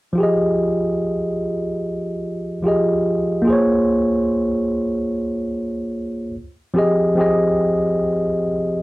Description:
hip hop; 73 BPM; 4/4; swing 61% on 16ths; F minor; A4 = 439 Hz
tine electric piano; solo; 0.1-8.8 s; F3 to Eb5; -17 LUFS; equal; low-pass filter
wet small room reverb, RT60 0.6 s; -17 LUFS; side -19 dB against mid
0.2-6.8 A section; 6.8-8.8 B section
0.2 Fm7; 3.5 Bbm9; 6.3 N.C.; 6.8 Fm7

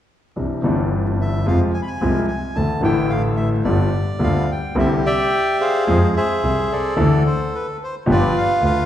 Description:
tango; 110 BPM; 4/4; rubato; C major; A4 = 440 Hz
clear grand piano; accompaniment; 0.4-8.8 s; G1 to A4; -20 LUFS; left 1 dB
clear double bass; bass; 0.4-8.8 s; G1 to F2; -22 LUFS; equal
bandoneon; melody; 1.2-8.9 s; F4 to B5; -21 LUFS; equal; slapback echo
wet recital hall reverb, RT60 1.5 s; heard from further back in the room, vinyl crackle; -16 LUFS; side -11 dB against mid
0.4-4.8 A section; 4.8-8.9 B section
0.4 Cadd9; 1.5 Fm; 2.6 Dsus2; 3.7 G7; 4.8 Cadd9; 5.9 Fm; 7.0 Dsus2; 8.1 G7

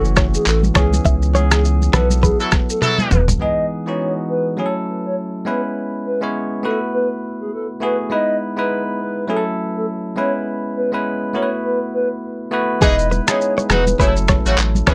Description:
afrobeats; 102 BPM; 4/4; swing 58% on 16ths; E major; A4 = 440 Hz
hollow clarinet-like synth lead; melody; 0.0-14.9 s; G#4 to D#5; -24 LUFS; equal; chorus, digital delay
bell-like tine electric piano; accompaniment; 0.0-14.9 s; E3 to C#5; -24 LUFS; equal
saturated sub bass; bass; 0.0-3.4, 12.8-14.9 s; D#1 to C#2; -20 LUFS; equal
lo-fi sampler-style drum kit; drums; 0.0-3.4, 12.8-14.9 s; finger snaps, handclaps, kick drum, rim click, shaker, toms; -20 LUFS; equal
direct-recorded clean electric guitar; riff; 0.2-3.0, 12.8-14.9 s; G#4 to E5; -24 LUFS; equal; digital delay
congas; percussion; 0.2-3.4, 12.8-14.9 s; -26 LUFS; equal
clear horn section; second line; 2.4-3.2, 12.8-14.9 s; C#3 to A4; -23 LUFS; equal
little or no reverb; -18 LUFS; mono
0.0-3.4 A section; 3.4-14.9 B section
band accent 1.1-3.4; drum fill 2.8-3.4
0.0 F#m7; 0.8 C#m7; 1.9 B7sus4; 3.4 Emaj7; 4.6 F#m7; 5.5 C#m7; 6.6 B7sus4; 8.1 Emaj7; 9.3 F#m7; 10.2 C#m7; 11.3 B7sus4; 12.8 Emaj7; 14.0 F#m7

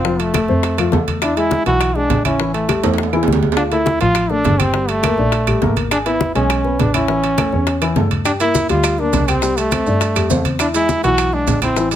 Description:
latin, salsa; 205 BPM; 4/4; straight; A4 = 440 Hz
bright trombone; melody; 0.0-12.0 s; A3 to F#4; -18 LUFS; right 1 dB
dark upright piano; accompaniment; 0.0-12.0 s; E3 to G#5; -20 LUFS; left 5 dB
warm double bass; bass; 0.0-12.0 s; F1 to G2; -21 LUFS; right 1 dB
bongos; percussion; 0.0-12.0 s; -26 LUFS; left 9 dB
congas; percussion; 0.0-12.0 s; -24 LUFS; left 2 dB
timbales; percussion; 0.2-12.0 s; -24 LUFS; right 10 dB
claves; percussion; 0.3-11.8 s; -29 LUFS; right 8 dB
maracas; percussion; 8.3-12.0 s; -28 LUFS; right 8 dB
light reverb; close, detailed microphones; -14 LUFS; side -10 dB against mid
0.0-12.0 A section
drum fill 2.8-3.6
0.1 F; 1.2 E7; 2.4 A5; 3.6 Dm; 4.7 Gmadd9; 5.9 E/G#; 7.1 A; 8.3 Gm; 9.4 Cadd9; 10.6 E7

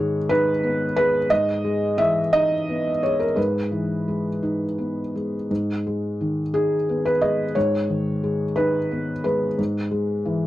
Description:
neoclassical minimalist piano; 58 BPM (dotted quarters); 6/8; rubato; G# minor; A4 = 439 Hz
felt-muted upright piano; solo; 0.0-10.5 s; G#2 to E5; -20 LUFS; equal
light reverb; dry, close 1970s-style studio recording; -20 LUFS; side -15 dB against mid
0.0-10.5 A section
0.0 G#m; 1.3 Emaj7/G#; 5.5 G#m; 9.6 E/G#

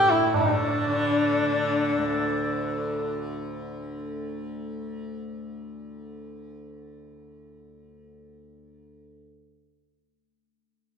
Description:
indian classical, Hindustani; 120 BPM; 4/4; straight; A4 = 440 Hz
rich sarangi; melody; 0.0-3.1 s; D4 to G4; -23 LUFS; left 1 dB
tanpura; drone; 0.0-9.1 s; D2 to D3; -31 LUFS; left 1 dB
tabla; percussion; 0.1-0.5 s; -30 LUFS; right 3 dB
wet large studio reverb, RT60 1.3 s; band playing live in one room; -24 LUFS; side -6 dB against mid
0.3-2.3 A section

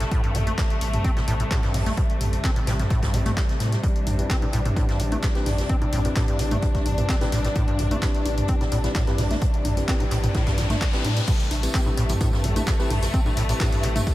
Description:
acid house; 129 BPM; 4/4; straight; A minor; A4 = 440 Hz
dark studio string section; sustained chords; 0.0-14.1 s; C3 to D4; -29 LUFS; left 1 dB; sidechain pumping
acid bass, square; riff; 0.0-14.1 s; G2 to C4; -29 LUFS; equal; overdrive, diffuse ambient delay
saturated sub bass; bass; 0.0-14.0 s; A1 to A2; -26 LUFS; equal; sidechain pumping
punchy analog drum machine; drums; 0.0-14.1 s; congas, crash cymbal, handclaps, hi-hat, toms; -29 LUFS; equal; overdrive
unplugged drum kit; drums; 0.0-14.1 s; hi-hat, snare drum; -39 LUFS; right 2 dB; sidechain pumping on hats, high-pass filter on hats, high-pass filter on snare, high-pass filter on room
electronic kick drum; drums; 0.1-14.1 s; -23 LUFS; equal; overdrive
tine electric piano; stabs; 4.2-14.1 s; C4 to B4; -33 LUFS; left 1 dB; medium tremolo, diffuse ambient delay
riser; sound effects; 9.2-11.3 s; -35 LUFS; left 2 dB
tambourine; percussion; 11.3-14.1 s; -37 LUFS; right 3 dB
light reverb, small room reverb; -20 LUFS; side -16 dB against mid
0.0-11.3 A section; 11.3-14.1 B section
riser 9.2-11.3; drop 11.3-14.1
0.0 Am7

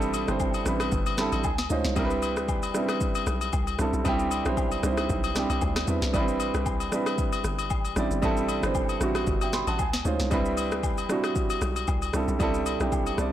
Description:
amapiano; 115 BPM; 4/4; swing 55% on 16ths; A4 = 442 Hz
dark baby grand piano; accompaniment; 0.0-13.3 s; G3 to C6; -27 LUFS; right 2 dB
tight log drum bass; bass; 0.0-13.3 s; G1 to E2; -30 LUFS; left 1 dB
afro-pop drum kit; drums; 0.0-13.3 s; kick drum, rim click, shaker, snare drum; -30 LUFS; left 1 dB; soft clipping on snare
agogo bells and woodblock; percussion; 0.1-13.2 s; -33 LUFS; left 10 dB
light reverb, digital ambience; blown-out, overdriven recording, overdrive; -24 LUFS; side -12 dB against mid
0.0-13.3 A section
grand piano fill 0.9-2.0, 9.3-10.3
0.0 Am11; 1.4 C#maj9; 2.0 Cmaj9; 6.1 Am11; 9.8 C#maj9; 10.3 Cmaj9

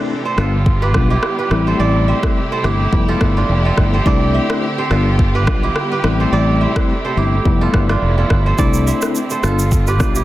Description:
afrobeats; 106 BPM; 4/4; swing 55% on 16ths; A minor; A4 = 436 Hz
mellow tine electric piano; accompaniment; 0.0-10.2 s; G3 to F4; -21 LUFS; left 5 dB
warm studio string section; sustained chords; 0.0-10.2 s; C3 to G4; -23 LUFS; equal
kora; riff; 0.0-10.2 s; D4 to E5; -21 LUFS; right 5 dB; digital delay
fingered electric bass; bass; 0.4-10.2 s; F1 to C2; -16 LUFS; equal
afro-pop drum kit; drums; 0.4-10.2 s; kick drum, rim click, shaker; -18 LUFS; equal
little or no reverb; dense, heavily limited modern master; -13 LUFS; side -15 dB against mid
0.0-10.2 A section
break 0.0-8.6
0.4 G7; 1.5 Am7; 2.9 Fmaj9#11; 4.1 C69; 4.9 G7; 6.0 Am7; 7.5 Fmaj9#11; 8.6 C69; 9.4 G7

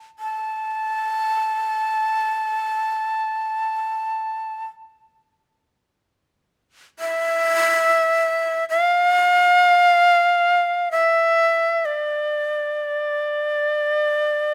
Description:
japanese traditional, Japanese chamber music; free time; D hirajoshi; A4 = 440 Hz
breathy bright shakuhachi; solo; 0.2-14.5 s; D5 to A5; -20 LUFS; equal
light reverb; close, detailed microphones; -20 LUFS; mono
0.0-14.5 A section
slowing down 8.9-14.5

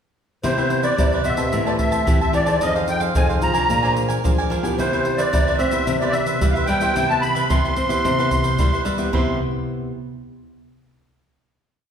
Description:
samba and choro; 110 BPM; 4/4; straight; C major; A4 = 440 Hz
musette accordion; melody; 0.4-9.4 s; C5 to C6; -22 LUFS; equal
cavaquinho; accompaniment; 0.4-9.4 s; D4 to A5; -27 LUFS; right 3 dB
nylon-string guitar; accompaniment; 0.4-9.9 s; C3 to C5; -25 LUFS; left 2 dB
nylon-string guitar; bass; 0.4-9.4 s; F2 to C4; -25 LUFS; equal
tube shaker, surdo and pandeiro; percussion; 0.4-9.3 s; -23 LUFS; equal
wet recital hall reverb, RT60 1.4 s; recorded in a church or concert hall; -17 LUFS; side -8 dB against mid
0.4-9.1 A section; 9.1-11.3 final chord
0.4 Cmaj7; 1.5 Am9; 2.6 Fm7; 3.7 Bb9; 4.8 Cmaj7

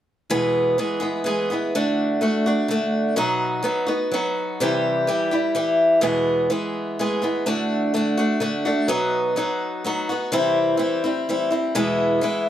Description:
rock; 126 BPM; 3/4; straight; E major; A4 = 440 Hz
picked old ladder-braced acoustic guitar; accompaniment; 0.3-12.5 s; E2 to G#4; -19 LUFS; equal
moderate studio reverb, RT60 0.6 s; -19 LUFS; side -11 dB against mid
0.3-6.0 A section; 6.0-12.5 B section
0.3 E; 1.7 D; 3.2 B; 4.6 C; 6.0 E; 7.5 D; 8.9 B; 10.3 C; 11.7 E

